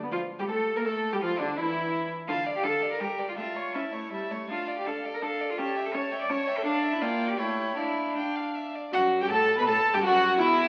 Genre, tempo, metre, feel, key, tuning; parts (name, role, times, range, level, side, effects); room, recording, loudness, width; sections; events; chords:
quick classical-period movement for string quartet; 165 BPM; 3/4; rubato; D minor; A4 = 440 Hz
warm viola; accompaniment; 0.0-10.7 s; D3 to B4; -32 LUFS; equal
warm violin; melody; 0.1-10.7 s; D4 to C#6; -35 LUFS; equal
rich violin; second line; 0.1-10.7 s; D4 to G5; -34 LUFS; equal
rich cello; bass; 0.1-10.7 s; E2 to D5; -34 LUFS; equal
wet recital hall reverb, RT60 1.6 s; very old 78 rpm record, vinyl crackle; -28 LUFS; mono
0.1-8.9 A section; 8.9-10.7 A section
0.1 Fadd9; 1.2 Dmadd9; 2.3 Dm; 3.0 Gm; 3.4 A; 4.5 Dm; 5.6 A7/C#; 6.7 Dm; 7.0 Gm/Bb; 7.4 A7; 7.8 Dm; 8.9 Gmaj9/F#; 10.0 Esus2